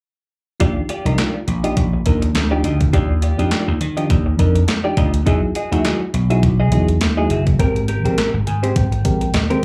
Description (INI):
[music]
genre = early-eighties boogie funk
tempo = 103 BPM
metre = 4/4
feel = swing 56% on 16ths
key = Eb major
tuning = A4 = 437 Hz
[part]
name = mellow FM electric piano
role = accompaniment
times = 0.6-9.6 s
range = F3 to Ab5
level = -25 LUFS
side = equal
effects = chorus, plate reverb, slapback echo
[part]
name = clean electric guitar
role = riff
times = 0.6-9.6 s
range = C4 to E5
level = -28 LUFS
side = equal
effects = lush chorus, slapback echo
[part]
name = vintage slap bass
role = bass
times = 0.6-9.5 s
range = F#1 to Eb3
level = -20 LUFS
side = equal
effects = none
[part]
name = crisp 8-bit digital drum machine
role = drums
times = 0.6-9.6 s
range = handclaps, hi-hat, kick drum, snare drum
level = -22 LUFS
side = equal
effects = overdrive
[sound]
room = light reverb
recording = live gig heard through the venue's PA, club reverb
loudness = -18 LUFS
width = mono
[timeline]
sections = 0.6-9.6 A section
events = FM electric piano fill 8.2-9.6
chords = 0.6 Ebmaj9; 5.3 Emaj9; 7.6 Abmaj9